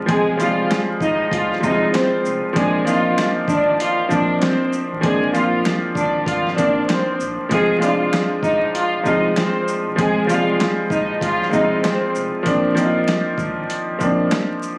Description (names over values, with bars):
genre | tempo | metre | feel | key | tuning
hip hop, boom-bap hip-hop | 97 BPM | 4/4 | swing 60% on 16ths | F dorian | A4 = 441 Hz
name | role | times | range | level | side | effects
bright upright piano | accompaniment | 0.0-14.8 s | F3 to Ab4 | -19 LUFS | equal | cassette tape, high-pass filter, low-pass filter
soft dub sub bass | bass | 0.0-14.3 s | Eb1 to Bb1 | -31 LUFS | equal | none
warm studio violin section | melody | 0.1-12.1 s | Ab3 to F5 | -20 LUFS | equal | high-pass filter, low-pass filter, ping-pong delay
boom bap sampler-style drum kit | drums | 0.1-14.8 s | hi-hat, kick drum, shaker, snare drum | -23 LUFS | equal | none
finger snap | percussion | 0.7-14.5 s | none | -30 LUFS | equal | none
room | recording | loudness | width
light reverb | recorded on a phone in the room, club reverb, vinyl crackle, compression | -16 LUFS | side -28 dB against mid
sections
0.0-14.8 A section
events
none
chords
0.0 Fm; 2.6 Bbadd9; 7.5 Fm; 12.5 Bbadd9